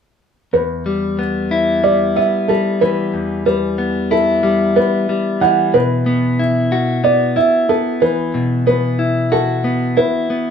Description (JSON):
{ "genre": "rock", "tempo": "92 BPM", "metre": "4/4", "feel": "straight", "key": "E minor", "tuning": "A4 = 440 Hz", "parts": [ { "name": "clean electric guitar", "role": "arpeggios", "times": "0.5-10.5 s", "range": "E2 to F#4", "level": "-16 LUFS", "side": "left 2 dB", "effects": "none" }, { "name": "felt-muted upright piano", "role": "arpeggios", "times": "0.5-10.5 s", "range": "A4 to F#5", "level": "-16 LUFS", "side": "right 2 dB", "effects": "none" } ], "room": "wet studio reverb, RT60 0.5 s", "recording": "band playing live in one room", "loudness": "-14 LUFS", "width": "side -7 dB against mid", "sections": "0.5-10.5 A section", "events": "none", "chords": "0.5 Em; 5.7 Bsus4" }